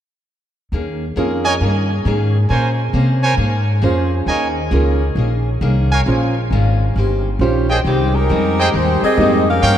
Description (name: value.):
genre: jazz.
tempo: 135 BPM.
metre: 4/4.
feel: swing 65% on 8ths.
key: Ab major.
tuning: A4 = 440 Hz.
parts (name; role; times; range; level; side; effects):
picked steel-string acoustic guitar; accompaniment; 0.7-9.8 s; G2 to C5; -23 LUFS; left 2 dB; none.
upright bass; bass; 0.7-9.8 s; G1 to C3; -17 LUFS; equal; none.
warm grand piano; accompaniment; 1.2-9.4 s; Ab3 to C5; -23 LUFS; right 4 dB; none.
brilliant trumpet section; stabs; 1.4-9.8 s; Ab4 to Ab5; -22 LUFS; right 2 dB; none.
mellow saxophone section; melody; 7.7-9.8 s; Eb3 to F5; -16 LUFS; left 1 dB; none.
room: moderate cathedral reverb, RT60 5.6 s.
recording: in a vast, echoing space.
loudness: -14 LUFS.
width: side -10 dB against mid.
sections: 0.7-7.8 A section; 7.8-9.8 B section.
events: none.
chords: 0.7 Eb7sus4; 2.5 Bbm9; 4.3 Eb7sus4; 6.1 Bbm7; 7.0 Eb13; 7.8 Abmaj7.